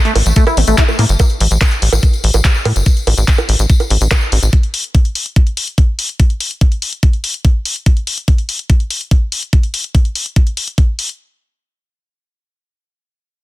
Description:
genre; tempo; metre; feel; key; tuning
psychedelic trance; 144 BPM; 4/4; straight; unclear; A4 = 440 Hz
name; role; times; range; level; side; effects
liquid acid bass; riff; 0.1-1.0 s; A3 to E4; -18 LUFS; left 1 dB; chorus, auto-pan, sidechain pumping, digital delay
big-room dance drum kit; drums; 0.1-11.2 s; bongos, handclaps, hi-hat; -18 LUFS; equal; none
tambourine; percussion; 0.1-4.5 s; none; -25 LUFS; left 5 dB; none
tight sequencer bass; bass; 0.2-4.5 s; G1 to A2; -12 LUFS; equal; none
electronic kick drum; drums; 0.4-10.9 s; none; -11 LUFS; equal; none
room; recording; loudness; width
digital ambience; dense, heavily limited modern master; -11 LUFS; side -17 dB against mid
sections
0.0-11.2 A section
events
filter sweep on acid bass 0.0-1.2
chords
0.0 A5

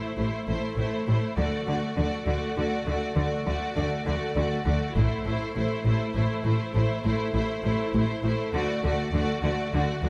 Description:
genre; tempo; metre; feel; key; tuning
cinematic, epic orchestral film score; 67 BPM (dotted quarters); 12/8; straight; D mixolydian; A4 = 441 Hz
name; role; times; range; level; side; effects
rich symphonic violin section; melody; 0.0-10.1 s; C5 to D5; -37 LUFS; equal; none
rich studio violin section; second line; 0.0-10.1 s; E4 to F#4; -36 LUFS; equal; none
rich symphonic viola section; accompaniment; 0.0-10.1 s; A3; -34 LUFS; equal; none
bright symphonic double bass section; bass; 0.2-10.1 s; A1 to D2; -32 LUFS; equal; none
rich symphonic cello section; bass; 0.2-10.1 s; A2 to D3; -32 LUFS; equal; none
taiko ensemble; drums; 5.0-6.1 s; none; -32 LUFS; equal; none
room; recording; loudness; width
moderate scoring stage reverb, RT60 1.6 s; lossy compression artefacts; -27 LUFS; mono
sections
0.0-10.1 A section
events
build-up 0.0-10.1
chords
0.0 Am; 1.4 D; 5.0 Am; 8.5 D

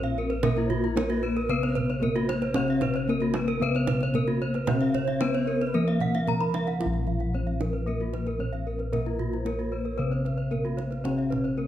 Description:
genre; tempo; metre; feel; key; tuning
Balinese gamelan; 113 BPM; 4/4; straight; Bb pelog; A4 = 438 Hz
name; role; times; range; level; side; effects
gamelan-type bronze metallophone; melody; 0.0-11.7 s; Bb3 to Bb4; -31 LUFS; left 2 dB; none
mellow hollow xiao; second line; 0.0-11.7 s; F4-42c to F5-46c; -38 LUFS; right 3 dB; none
gamelan-type bronze metallophone; accompaniment; 0.0-11.7 s; C3+50c to Cb4; -36 LUFS; left 5 dB; none
gamelan-type bronze metallophone; arpeggios; 0.0-11.7 s; F4-45c to Bb5; -32 LUFS; left 1 dB; none
gamelan-type bronze metallophone; arpeggios; 0.0-11.4 s; Gb4-40c to Cb6; -35 LUFS; right 4 dB; none
gamelan-type bossed gongs; bass; 0.0-11.7 s; Bb1 to Bb4; -29 LUFS; equal; none
kendang; percussion; 0.0-11.5 s; none; -33 LUFS; right 5 dB; none
room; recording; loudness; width
moderate recital hall reverb, RT60 1.7 s; close, detailed microphones; -24 LUFS; side -11 dB against mid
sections
0.0-11.7 A section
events
none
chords
none

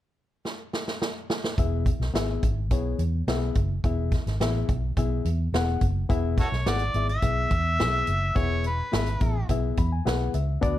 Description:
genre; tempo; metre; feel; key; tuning
uptempo 1960s-style soul; 106 BPM; 4/4; straight; E mixolydian; A4 = 440 Hz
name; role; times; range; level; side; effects
swinging big-band drum kit; drums; 0.5-10.8 s; hi-hat, kick drum, snare drum; -28 LUFS; equal; none
barky reed electric piano; accompaniment; 1.6-10.8 s; B3 to B5; -31 LUFS; left 6 dB; overdrive
vintage muted fingered electric bass; bass; 1.6-10.8 s; E1 to E2; -26 LUFS; equal; none
warm harmonica; melody; 6.4-9.5 s; F#4 to E5; -28 LUFS; equal; none
room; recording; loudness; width
light reverb; none; -23 LUFS; side -13 dB against mid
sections
0.0-1.6 A section; 1.6-6.1 B section; 6.1-10.8 C section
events
drum fill 0.5-1.6; reed electric piano fill 9.5-10.6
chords
0.0 N.C.; 1.6 E

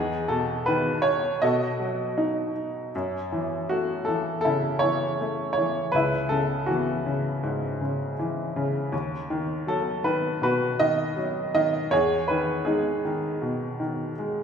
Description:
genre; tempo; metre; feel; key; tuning
folk; 80 BPM; 4/4; straight; F# dorian; A4 = 442 Hz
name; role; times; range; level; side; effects
bright upright piano; melody; 0.0-14.4 s; C#2 to D#5; -23 LUFS; equal; none
room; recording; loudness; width
wet recital hall reverb, RT60 1.6 s; recorded in a church or concert hall; -23 LUFS; side -7 dB against mid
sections
0.0-2.9 A section; 2.9-14.4 A section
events
none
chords
0.0 E5; 1.4 B7; 2.9 F#m7; 5.9 C#m7; 8.9 B/D#; 11.9 Emaj7

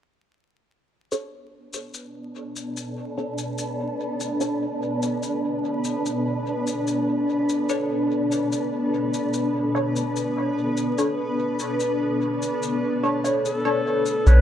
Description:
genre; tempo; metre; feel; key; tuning
ambient dub; 73 BPM; 4/4; straight; B minor; A4 = 435 Hz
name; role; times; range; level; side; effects
granular cloud pad; sustained chords; 2.0-14.4 s; B3 to B4; -26 LUFS; left 1 dB; built-in reverb
filtered dub chord stab; stabs; 1.1-14.4 s; D4 to C#5; -28 LUFS; equal; phaser, lush chorus, dub echo
shaker; drums; 1.1-14.4 s; none; -37 LUFS; left 5 dB; dub echo
wind-like tuned noise texture; texture; 2.2-14.3 s; D4; -27 LUFS; equal; built-in reverb
mellow clarinet; melody; 13.4-14.4 s; A4 to B4; -24 LUFS; left 2 dB; dub echo
soft dub sub bass; bass; 14.3-14.4 s; B1; -10 LUFS; equal; none
room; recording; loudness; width
moderate plate reverb, RT60 2.3 s; echo-heavy mix, vinyl crackle; -22 LUFS; side -10 dB against mid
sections
1.1-14.3 A section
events
filter sweep on ambient pad 1.1-14.3; filter sweep on synth stab 1.1-14.3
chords
1.1 Bm9

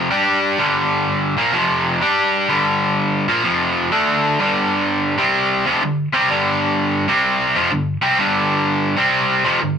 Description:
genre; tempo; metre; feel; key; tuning
rock; 126 BPM; 4/4; swing 66% on 8ths; unclear; A4 = 439 Hz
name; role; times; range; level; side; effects
crunchy overdriven guitar; solo; 0.0-9.8 s; F2 to G4; -15 LUFS; equal; none
room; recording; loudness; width
moderate studio ambience, RT60 0.5 s; band playing live in one room; -15 LUFS; side -7 dB against mid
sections
0.0-4.4 A section; 4.4-9.8 B section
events
none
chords
0.1 G5; 1.5 F5; 2.0 G5; 3.4 F5; 3.9 D5; 4.4 G5; 5.1 C5; 5.6 G5; 7.0 C5; 7.5 G5; 8.9 C5

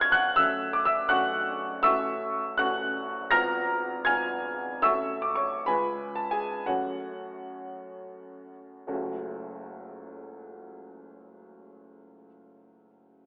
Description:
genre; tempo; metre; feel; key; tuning
classical, romantic character piece for solo piano; 51-85 BPM (dotted quarters); 6/8; rubato; F# minor; A4 = 440 Hz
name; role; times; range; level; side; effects
warm upright piano; solo; 0.0-13.3 s; F#1 to A#6; -28 LUFS; equal; none
room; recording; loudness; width
moderate scoring stage reverb, RT60 1.5 s; telephone sound; -27 LUFS; mono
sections
0.0-8.9 A section; 8.9-13.0 B section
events
slowing down 4.1-8.9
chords
0.4 F#m; 1.9 F#m/A; 3.3 Fdim/Ab; 4.8 F#m/A; 5.7 C#7; 6.7 F#m

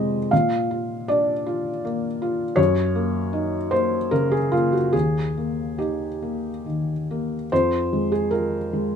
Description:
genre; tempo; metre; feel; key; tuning
neoclassical minimalist piano; 69-81 BPM; 3/4; rubato; unclear; A4 = 437 Hz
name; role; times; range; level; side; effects
felt-muted upright piano; solo; 0.0-9.0 s; Eb2 to F5; -20 LUFS; equal; none
room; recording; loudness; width
light reverb; minimal, uncompressed stereo recording; -20 LUFS; side -7 dB against mid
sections
0.0-7.5 A section; 7.5-9.0 A section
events
none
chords
0.3 Bb; 2.6 Gb6; 4.9 Eb; 7.5 Fm

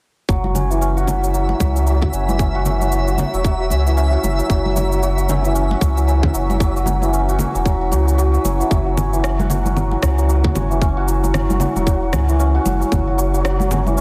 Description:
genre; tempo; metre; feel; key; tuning
organic downtempo; 114 BPM; 4/4; swing 59% on 16ths; unclear; A4 = 440 Hz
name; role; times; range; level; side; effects
santur; arpeggios; 0.3-14.0 s; E3 to F#4; -23 LUFS; equal; low-pass filter, digital delay
round analog bass; bass; 0.3-14.0 s; E1 to C#2; -21 LUFS; equal; none
electronic kick drum; drums; 0.3-13.0 s; none; -20 LUFS; equal; none
electronic shaker, congas and rim click; drums; 0.3-14.0 s; none; -29 LUFS; equal; none
twinkling granular texture; texture; 1.2-8.7 s; E5; -32 LUFS; equal; built-in reverb
congas; percussion; 0.4-14.0 s; none; -29 LUFS; equal; none
room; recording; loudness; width
light reverb, digital ambience; dense, heavily limited modern master; -18 LUFS; mono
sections
0.3-8.7 A section; 8.7-14.0 B section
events
filter sweep on analog synth bass 0.3-8.7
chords
0.3 F#5

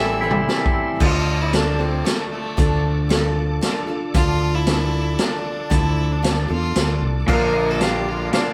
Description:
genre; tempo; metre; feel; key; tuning
folk rock and heartland rock; 115 BPM; 3/4; straight; D minor; A4 = 440 Hz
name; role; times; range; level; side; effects
clear fiddle; melody; 0.0-8.5 s; A3 to E5; -29 LUFS; equal; none
picked acoustic archtop guitar; accompaniment; 0.0-8.5 s; Bb2 to Bb4; -28 LUFS; equal; none
bright tonewheel organ; sustained chords; 0.0-8.5 s; A4 to D6; -37 LUFS; equal; none
twangy electric guitar; riff; 0.0-1.0, 7.3-8.5 s; A2 to F4; -25 LUFS; equal; none
fingered electric bass; bass; 0.0-8.3 s; A1 to E2; -24 LUFS; equal; none
vintage drum kit; drums; 0.3-8.5 s; crash cymbal, hi-hat, kick drum, snare drum, toms; -24 LUFS; equal; none
room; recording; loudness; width
moderate stone room reverb, RT60 1.0 s; band playing live in one room; -20 LUFS; mono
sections
0.0-1.0 A section; 1.0-8.5 B section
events
drum fill 0.0-1.0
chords
0.0 Am7; 1.0 Dm; 7.3 Bb

